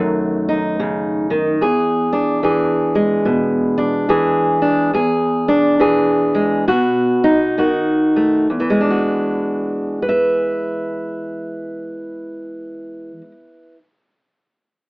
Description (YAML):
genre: blues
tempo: 64-73 BPM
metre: 4/4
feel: swing 62% on 8ths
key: unclear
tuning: A4 = 440 Hz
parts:
  - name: fingerpicked steel-string acoustic guitar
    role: solo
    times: 0.0-13.8 s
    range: E2 to E5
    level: -15 LUFS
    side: equal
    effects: none
room: light reverb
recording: AM radio sound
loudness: -14 LUFS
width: side -26 dB against mid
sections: 0.0-8.5 A section; 8.5-12.2 B section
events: slowing down 1.6-8.5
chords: 0.0 B7 (rootless); 1.6 E7; 6.7 B7; 8.5 E9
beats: 0.79 | 1.61 2.43 3.26 4.09 | 4.94 5.80 6.68 7.58 | 8.51 9.44 10.38 11.31